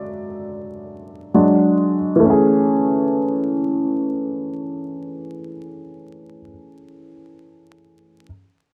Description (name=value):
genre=hip hop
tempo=free time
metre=none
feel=none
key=A major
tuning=A4 = 441 Hz
part: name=warm upright piano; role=accompaniment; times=0.0-8.3 s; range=E3 to E5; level=-20 LUFS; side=equal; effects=cassette tape, low-pass filter
room=moderate studio reverb, RT60 0.6 s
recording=vinyl crackle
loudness=-18 LUFS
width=mono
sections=0.0-2.2 A section; 2.2-5.7 B section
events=upright piano solo 0.0-2.2; filter sweep on upright piano 0.0-2.2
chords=0.0 F#sus2; 2.2 Amaj7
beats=free time